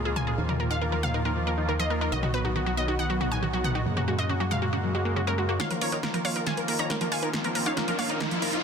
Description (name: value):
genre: uplifting trance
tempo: 138 BPM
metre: 4/4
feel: straight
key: Eb minor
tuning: A4 = 440 Hz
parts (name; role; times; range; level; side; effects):
- wide unison pluck; melody; 0.0-8.5 s; F#4 to Bb5; -30 LUFS; equal; tape echo
- solid FM bass; bass; 0.0-5.6 s; B1 to Gb2; -30 LUFS; left 1 dB; none
- filtered supersaw swell; sustained chords; 0.1-8.6 s; Db3 to F#4; -32 LUFS; equal; none
- tight sequenced synth; arpeggios; 0.1-8.6 s; Db3 to Eb4; -33 LUFS; right 2 dB; chorus, phaser, dub echo
- punchy analog drum machine; drums; 0.2-8.6 s; hi-hat, snare drum, toms; -32 LUFS; equal; overdrive
- wide unison pluck; second line; 5.6-8.5 s; Bb4 to Bb5; -35 LUFS; equal; dub echo
- riser; sound effects; 6.6-8.6 s; none; -34 LUFS; left 1 dB; none
room: light reverb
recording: dense, heavily limited modern master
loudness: -24 LUFS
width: side -6 dB against mid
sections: 0.0-5.6 A section; 5.6-8.6 B section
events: filter sweep on synth arpeggio sound 0.0-5.6; build-up 5.6-8.6; drum fill 5.6-8.6; riser 6.6-8.6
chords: 0.4 Ebsus2; 2.1 B; 3.9 Gbadd9; 5.6 Ebsus2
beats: | 0.38 0.81 1.25 1.68 | 2.12 2.55 2.99 3.42 | 3.86 4.29 4.73 5.16 | 5.60 6.03 6.47 6.90 | 7.34 7.77 8.21